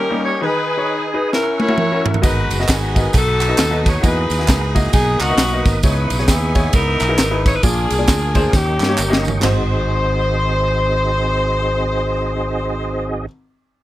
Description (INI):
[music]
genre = uptempo gospel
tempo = 133 BPM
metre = 4/4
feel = swing 60% on 8ths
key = G# minor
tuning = A4 = 440 Hz
[part]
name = warm saxophone section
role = melody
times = 0.0-13.3 s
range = A#3 to C#5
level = -20 LUFS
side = left 1 dB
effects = none
[part]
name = warm concert grand piano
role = accompaniment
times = 0.0-13.3 s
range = G#1 to E5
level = -24 LUFS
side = left 2 dB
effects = none
[part]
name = tonewheel organ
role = sustained chords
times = 0.0-13.3 s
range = A#3 to D#6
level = -26 LUFS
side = right 3 dB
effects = slow rotary speaker, chorus vibrato
[part]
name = crisp fusion drum kit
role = drums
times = 1.3-9.6 s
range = kick drum, ride cymbal, snare drum, toms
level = -18 LUFS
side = right 1 dB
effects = none
[part]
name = fingered electric bass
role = bass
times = 2.2-13.3 s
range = F#1 to G2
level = -21 LUFS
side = right 1 dB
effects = none
[part]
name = tambourine and handclaps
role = percussion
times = 2.2-9.7 s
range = none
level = -27 LUFS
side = right 4 dB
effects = none
[sound]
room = little or no reverb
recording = none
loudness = -14 LUFS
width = side -15 dB against mid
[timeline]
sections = 0.0-9.4 A section; 9.4-13.0 B section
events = drum fill 1.3-2.2, 8.5-9.4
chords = 0.4 G#m/D#; 1.3 F#7; 2.2 G#m9; 3.1 B7; 4.0 Emaj9#11; 4.9 Bmaj7; 5.8 C#m9; 7.6 A#7; 8.5 D#7; 9.4 G#7